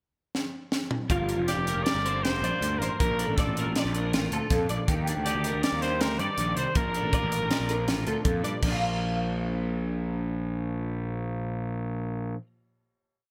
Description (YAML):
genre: math rock and midwest emo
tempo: 160 BPM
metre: 5/4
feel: straight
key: Bb major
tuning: A4 = 440 Hz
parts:
  - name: crisp fusion drum kit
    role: drums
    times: 0.3-8.7 s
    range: crash cymbal, hi-hat, kick drum, snare drum, toms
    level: -32 LUFS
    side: equal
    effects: none
  - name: twelve-string electric guitar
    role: accompaniment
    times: 1.1-12.4 s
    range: G2 to Bb4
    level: -37 LUFS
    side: equal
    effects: analog chorus
  - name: twelve-string electric guitar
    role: arpeggios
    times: 1.1-12.5 s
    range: F4 to Bb5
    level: -35 LUFS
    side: equal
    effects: ensemble chorus
  - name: fuzz picked electric bass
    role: bass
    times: 1.1-12.3 s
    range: F1 to G2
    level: -33 LUFS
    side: equal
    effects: overdrive
  - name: clear trumpet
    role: melody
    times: 1.5-8.3 s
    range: G4 to D5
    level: -33 LUFS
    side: equal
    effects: delay
room: moderate lush hall reverb, RT60 1.6 s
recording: bright 1980s-style digital production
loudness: -28 LUFS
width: mono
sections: 0.0-1.1 pickup bar; 1.1-8.6 A section; 8.6-12.4 final chord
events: drum fill 0.3-1.1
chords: 0.0 N.C.; 1.1 Gm7; 3.0 Bbmaj7; 4.9 Ebmaj7; 6.8 Bbmaj7; 8.6 Bb